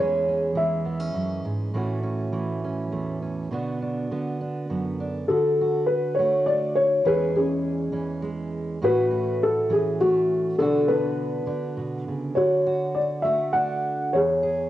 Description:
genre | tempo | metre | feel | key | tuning
acoustic folk-pop ballad | 102 BPM | 3/4 | straight | A major | A4 = 439 Hz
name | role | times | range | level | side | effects
felt-muted upright piano | melody | 0.0-1.4, 5.3-14.7 s | C#4 to F#5 | -21 LUFS | left 1 dB | cassette tape, plate reverb
fingerpicked steel-string acoustic guitar | accompaniment | 0.0-14.7 s | E2 to G#4 | -28 LUFS | right 2 dB | cassette tape, plate reverb
room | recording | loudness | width
wet studio reverb, RT60 0.6 s | home recording on cassette, nothing above 11.0 kHz | -22 LUFS | side -13 dB against mid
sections
0.0-5.3 A section; 5.3-14.7 B section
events
none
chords
0.0 E6; 1.7 A6; 3.5 Bm; 5.3 D; 7.0 E6; 8.8 A6; 10.6 Bm; 12.4 D; 14.1 E6

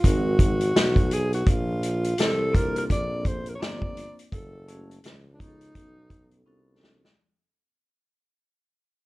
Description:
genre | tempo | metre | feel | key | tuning
hip hop, jazz-hop | 84 BPM | 4/4 | swing 60% on 16ths | unclear | A4 = 440 Hz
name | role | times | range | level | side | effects
mellow alto saxophone | melody | 0.0-6.5 s | D4 to D5 | -28 LUFS | equal | plate reverb
vibraphone with medium mallets | accompaniment | 0.0-7.0 s | Ab3 to C5 | -35 LUFS | right 1 dB | plate reverb
breathy tuba | bass | 0.0-7.1 s | F#1 to C#2 | -29 LUFS | equal | none
vintage drum kit | drums | 0.0-7.2 s | hi-hat, kick drum, snare drum | -23 LUFS | equal | none
room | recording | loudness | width
little or no reverb | dark, warm production | -21 LUFS | side -20 dB against mid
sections
0.0-7.2 A section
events
fade-out 0.0-7.2; drum fill 6.5-7.2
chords
0.0 Ab9; 1.5 Bbmaj7; 4.3 F#m9; 5.8 B9

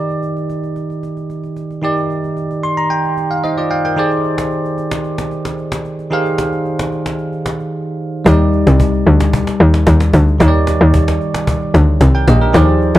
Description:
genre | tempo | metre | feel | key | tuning
amapiano | 112 BPM | 4/4 | straight | Eb major | A4 = 444 Hz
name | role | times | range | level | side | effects
bell-like tine electric piano | accompaniment | 0.0-13.0 s | Eb3 to C6 | -17 LUFS | right 1 dB | lush chorus
cajon | drums | 0.1-13.0 s | none | -21 LUFS | equal | none
tight log drum bass | bass | 8.3-13.0 s | Bb1 to Eb2 | -10 LUFS | equal | none
room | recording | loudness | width
little or no reverb | dark, warm production | -12 LUFS | side -15 dB against mid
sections
0.0-8.3 A section; 8.3-13.0 B section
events
tine electric piano fill 2.4-4.0; silent gap 7.7-8.3; drop 8.3-13.0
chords
0.0 Ebmaj7; 4.0 Fm13/Eb; 8.3 Ebmaj7

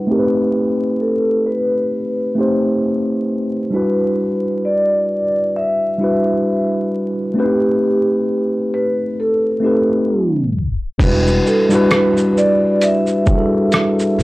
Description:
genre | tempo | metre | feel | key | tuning
lo-fi hip hop | 66 BPM | 4/4 | swing 56% on 16ths | E minor | A4 = 444 Hz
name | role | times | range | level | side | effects
mellow tine electric piano | accompaniment | 0.0-14.2 s | G3 to F#5 | -16 LUFS | equal | slow stereo tremolo, cassette tape, low-pass filter
vibraphone with soft mallets | melody | 1.0-14.2 s | G4 to E5 | -18 LUFS | equal | low-pass filter
upright bass | bass | 11.0-14.2 s | E1 to A#1 | -19 LUFS | equal | none
lo-fi sampler-style drum kit | drums | 11.0-14.2 s | crash cymbal, hi-hat, kick drum, rim click, shaker | -18 LUFS | equal | overdrive, vintage 12-bit sampler grit
room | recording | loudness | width
moderate small room reverb, RT60 0.5 s | dry, gritty hardware recording, vinyl crackle, tape stop | -14 LUFS | side -19 dB against mid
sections
0.0-11.0 A section; 11.0-14.2 B section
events
filter sweep 0.0-11.0; tape stop 10.1-11.0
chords
0.1 B7b9b13; 3.7 Em9; 7.4 B7b9b13; 11.0 Em9

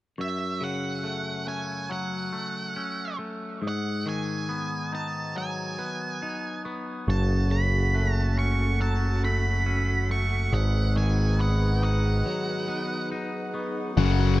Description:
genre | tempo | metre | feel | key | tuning
post-rock | 70 BPM | 4/4 | straight | F# dorian | A4 = 441 Hz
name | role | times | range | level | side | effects
octave-fuzz lead guitar | melody | 0.2-14.4 s | E5 to C#6 | -32 LUFS | right 3 dB | distortion, analog delay
glockenspiel with rubber mallets | arpeggios | 0.2-14.0 s | C#6 to F#6 | -41 LUFS | right 4 dB | analog delay
twangy electric guitar | arpeggios | 0.2-14.4 s | F#2 to D#4 | -31 LUFS | left 2 dB | phaser
warm chamber string section | sustained chords | 7.1-14.4 s | C#4 to F#5 | -34 LUFS | equal | none
growling picked electric bass | bass | 7.1-14.4 s | F#1 to G#1 | -23 LUFS | equal | overdrive
tight distorted guitar | riff | 14.0-14.4 s | F#2 to F#3 | -22 LUFS | left 8 dB | distortion
room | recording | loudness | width
studio ambience | dark, warm production | -24 LUFS | side -16 dB against mid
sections
0.2-14.0 A section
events
break 12.3-14.0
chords
0.2 F#m; 3.6 G#m7; 7.1 F#m; 10.5 G#m7

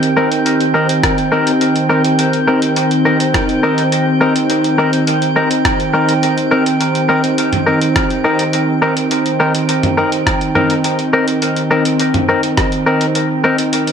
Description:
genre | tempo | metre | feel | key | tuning
ambient dub | 104 BPM | 4/4 | straight | C minor | A4 = 440 Hz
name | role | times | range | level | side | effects
warm analog pad | sustained chords | 0.0-13.9 s | Eb3 to Bb4 | -15 LUFS | right 1 dB | lush chorus
lo-fi sampler-style drum kit | drums | 0.0-13.9 s | hi-hat, rim click, toms | -20 LUFS | equal | dub echo
drifting glass-harmonics texture | texture | 0.0-13.9 s | G5 | -22 LUFS | right 4 dB | chorus, built-in reverb
clean electric guitar | stabs | 0.2-13.6 s | C4 to Bb4 | -16 LUFS | left 2 dB | spring reverb, dub echo
electronic kick drum | drums | 1.0-12.7 s | none | -20 LUFS | equal | none
room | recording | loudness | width
moderate echo chamber reverb, RT60 2.0 s, digital ambience | echo-heavy mix | -12 LUFS | side -7 dB against mid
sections
0.0-13.9 A section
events
kick drops out 13.7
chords
0.0 Cm7

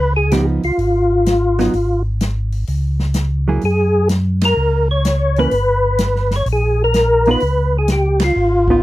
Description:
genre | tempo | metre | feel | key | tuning
soul jazz organ trio | 127 BPM | 4/4 | swing 68% on 8ths | Db mixolydian | A4 = 440 Hz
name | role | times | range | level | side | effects
percussive tonewheel organ | melody | 0.0-8.8 s | F4 to Db5 | -16 LUFS | left 1 dB | slow rotary speaker, chorus vibrato
mellow tonewheel organ | bass | 0.0-8.8 s | G1 to Gb2 | -17 LUFS | equal | chorus vibrato, slow rotary speaker
hollow-body jazz guitar | accompaniment | 0.3-8.8 s | Fb3 to Ab4 | -18 LUFS | right 4 dB | none
open jazz drum kit | drums | 0.3-8.7 s | hi-hat, kick drum, ride cymbal, snare drum | -22 LUFS | left 1 dB | none
room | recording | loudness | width
little or no reverb | dry, close 1970s-style studio recording | -14 LUFS | side -16 dB against mid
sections
0.0-8.8 A section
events
band accent 4.3, 8.1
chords
0.0 Db9; 1.7 N.C.; 2.7 Db5; 3.6 Gbadd9; 5.5 G(#9); 7.4 Db7

